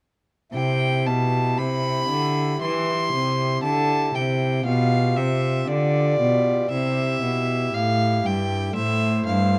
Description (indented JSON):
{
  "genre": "classical, baroque-style sonata movement with continuo",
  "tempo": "59 BPM",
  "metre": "4/4",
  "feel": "straight",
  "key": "C major",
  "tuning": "A4 = 440 Hz",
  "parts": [
    { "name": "rich violin", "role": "melody", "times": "0.5-9.6 s", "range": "D5 to C6", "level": "-26 LUFS", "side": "equal", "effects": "none" },
    { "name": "pipe organ, principal", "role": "accompaniment", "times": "0.5-9.6 s", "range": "G2 to C5", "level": "-29 LUFS", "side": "equal", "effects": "none" },
    { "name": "rich cello", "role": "bass", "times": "0.5-9.6 s", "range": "G2 to E3", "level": "-26 LUFS", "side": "equal", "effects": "none" }
  ],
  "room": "light reverb",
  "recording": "dark, warm production",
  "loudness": "-22 LUFS",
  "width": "mono",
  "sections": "0.5-9.6 A section",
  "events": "none",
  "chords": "0.5 C; 4.7 G7/B; 6.7 C; 8.8 Am"
}